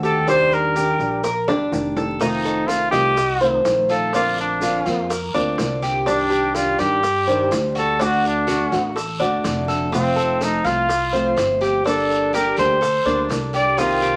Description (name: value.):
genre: latin, Cuban son and guajira.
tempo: 124 BPM.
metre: 4/4.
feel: straight.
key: G minor.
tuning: A4 = 440 Hz.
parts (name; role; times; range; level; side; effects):
warm trumpet; melody; 0.0-14.2 s; C4 to D5; -22 LUFS; equal; none.
fingerpicked old ladder-braced acoustic guitar; accompaniment; 0.0-14.2 s; C3 to A4; -26 LUFS; equal; none.
Cuban tres; arpeggios; 0.0-14.2 s; D4 to F5; -25 LUFS; equal; none.
upright bass; bass; 0.0-14.2 s; F1 to G2; -32 LUFS; equal; none.
maracas; percussion; 0.0-14.2 s; none; -40 LUFS; equal; none.
bongos; percussion; 0.3-14.0 s; none; -32 LUFS; equal; none.
guiro; percussion; 2.2-14.2 s; none; -37 LUFS; equal; none.
room: moderate studio ambience, RT60 0.5 s.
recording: vinyl crackle.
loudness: -20 LUFS.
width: mono.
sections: 0.0-14.2 A section.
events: drum fill 1.5-2.2.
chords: 0.3 Ebmaj7; 2.2 F7; 4.1 Bbadd9; 6.1 Cmadd9; 8.0 D; 9.9 F; 11.9 Gmadd9.